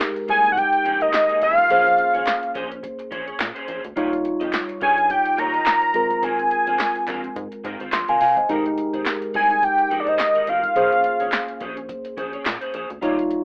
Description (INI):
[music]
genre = early-eighties boogie funk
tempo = 106 BPM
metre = 4/4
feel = swing 56% on 16ths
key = Bb dorian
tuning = A4 = 440 Hz
[part]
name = mellow tine electric piano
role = accompaniment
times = 0.0-13.4 s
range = G3 to C6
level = -27 LUFS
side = equal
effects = phaser, plate reverb
[part]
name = electric guitar at the edge of break-up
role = riff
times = 0.0-13.3 s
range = Bb3 to Eb5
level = -34 LUFS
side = equal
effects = ensemble chorus
[part]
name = electro analog drum machine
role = drums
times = 0.0-13.4 s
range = handclaps, hi-hat, kick drum, snare drum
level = -29 LUFS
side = equal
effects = none
[part]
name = group handclap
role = percussion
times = 0.0-12.6 s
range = none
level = -33 LUFS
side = equal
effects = none
[part]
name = fat analog lead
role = melody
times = 0.3-11.6 s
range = D5 to Bb5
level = -20 LUFS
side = equal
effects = chorus, slapback echo
[part]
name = rubbery square bass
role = bass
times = 0.3-13.4 s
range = F1 to Bb2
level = -39 LUFS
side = equal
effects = none
[sound]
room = moderate studio reverb, RT60 0.6 s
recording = rough home demo mix, telephone sound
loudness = -20 LUFS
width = mono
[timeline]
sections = 0.0-13.4 A section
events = tine electric piano fill 7.6-8.5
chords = 0.0 Fm11; 1.7 Bbm9; 4.0 Eb9; 5.9 Ab69; 8.5 Fm11; 10.8 Bbm9